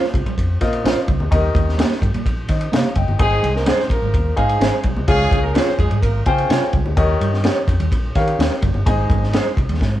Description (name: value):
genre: uptempo 1960s-style soul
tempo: 127 BPM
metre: 4/4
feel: straight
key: Ab major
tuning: A4 = 440 Hz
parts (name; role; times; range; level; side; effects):
- warm upright piano; accompaniment; 0.0-9.5 s; Ab2 to G5; -22 LUFS; left 2 dB; none
- mellow electric guitar; stabs; 0.0-9.5 s; Bb3 to Db5; -24 LUFS; right 4 dB; spring reverb
- crunchy breakbeat drum kit; drums; 0.0-9.9 s; kick drum, ride cymbal, snare drum; -19 LUFS; equal; none
- congas; percussion; 0.0-10.0 s; none; -30 LUFS; right 2 dB; none
- vintage muted fingered electric bass; bass; 0.1-10.0 s; Gb1 to Eb3; -20 LUFS; equal; none
- warm horn section; second line; 3.2-6.7 s; Ab3 to C5; -22 LUFS; right 1 dB; none
room: light reverb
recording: band playing live in one room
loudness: -15 LUFS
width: side -13 dB against mid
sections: 0.0-10.0 A section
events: drum fill 9.8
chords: 0.0 Bbmadd9; 1.3 Eb; 3.2 Ab; 5.1 Db; 7.0 Eb7; 8.9 Ab